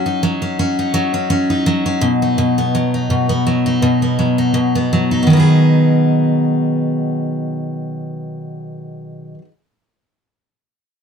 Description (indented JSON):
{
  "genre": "pop",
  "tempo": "83 BPM",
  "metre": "4/4",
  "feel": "swing 55% on 16ths",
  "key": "B major",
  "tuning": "A4 = 440 Hz",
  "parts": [
    { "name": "picked steel-string acoustic guitar", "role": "accompaniment", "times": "0.0-9.5 s", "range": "B2 to G#4", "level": "-14 LUFS", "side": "equal", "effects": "none" }
  ],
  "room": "light reverb",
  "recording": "close, detailed microphones",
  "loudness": "-13 LUFS",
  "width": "side -7 dB against mid",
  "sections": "0.0-5.3 A section; 5.3-8.2 B section",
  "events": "none",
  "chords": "0.0 F#5; 2.0 B; 5.3 B6",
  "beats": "0.22 0.94 1.66 | 2.39 3.11 3.83 4.56 | 5.28 6.01 6.73 7.46"
}